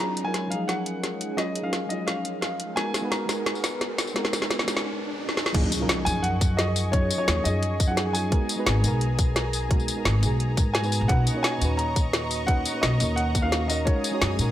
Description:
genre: liquid drum and bass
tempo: 173 BPM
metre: 4/4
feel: straight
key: Eb minor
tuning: A4 = 441 Hz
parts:
  - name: warm baby grand piano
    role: melody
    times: 0.0-3.8, 6.1-14.5 s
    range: Db5 to Bb5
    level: -30 LUFS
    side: left 1 dB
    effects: dub echo
  - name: mellow FM electric piano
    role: accompaniment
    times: 0.0-14.5 s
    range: A#2 to C#5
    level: -30 LUFS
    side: right 1 dB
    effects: chorus
  - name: lush unison pad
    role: sustained chords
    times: 0.0-14.5 s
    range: Ab3 to Eb6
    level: -34 LUFS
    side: equal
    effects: chorus, sidechain pumping
  - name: riser and impact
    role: sound effects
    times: 0.0-6.9 s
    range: none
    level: -36 LUFS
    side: right 1 dB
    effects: none
  - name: drum and bass drum kit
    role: drums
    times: 0.2-14.5 s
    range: crash cymbal, hi-hat, snare drum, tambourine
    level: -27 LUFS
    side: left 1 dB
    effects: none
  - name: upright bass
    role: bass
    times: 5.5-14.5 s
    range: Ab1 to Bb2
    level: -26 LUFS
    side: equal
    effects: none
  - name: electronic kick drum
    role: drums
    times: 5.5-13.9 s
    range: none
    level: -23 LUFS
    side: equal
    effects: none
room: light reverb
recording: none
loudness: -22 LUFS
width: side -12 dB against mid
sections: 0.0-5.5 A section; 5.5-14.5 B section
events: build-up 0.0-5.5; drum fill 0.0-4.9, 5.3; riser 0.0-5.5; filter sweep on analog synth pad 0.0-5.5; break 4.9-5.5; drop 5.5-14.5; impact 5.5-6.9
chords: 0.0 Ebm11; 2.8 Abm9; 5.5 Ebm11; 8.3 Abm9; 11.1 Bmaj9; 13.9 Gb69

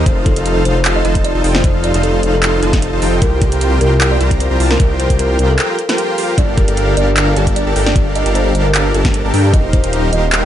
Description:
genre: future bass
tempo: 152 BPM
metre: 4/4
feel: swing 53% on 16ths, half-time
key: G minor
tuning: A4 = 440 Hz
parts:
  - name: dense compressed supersaw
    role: riff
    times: 0.0-10.4 s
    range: D4 to Bb5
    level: -18 LUFS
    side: equal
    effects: sidechain pumping
  - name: wide detuned saw bass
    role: bass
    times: 0.0-10.4 s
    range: Eb1 to G2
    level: -15 LUFS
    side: equal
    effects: chorus, sidechain pumping
  - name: kalimba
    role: melody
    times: 0.1-10.3 s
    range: G4 to F5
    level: -20 LUFS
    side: equal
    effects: sidechain pumping, ping-pong delay
  - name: dubstep drum kit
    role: drums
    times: 0.1-10.4 s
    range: handclaps, hi-hat, snare drum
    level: -19 LUFS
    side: right 1 dB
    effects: none
  - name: electronic kick drum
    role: drums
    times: 0.1-9.8 s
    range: none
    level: -14 LUFS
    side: equal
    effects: none
room: little or no reverb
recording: nothing above 10.8 kHz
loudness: -11 LUFS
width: side -11 dB against mid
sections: 0.0-10.4 A section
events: break 5.6-6.4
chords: 0.1 F7; 3.2 C7sus4; 6.4 Gm9; 9.5 Eb69

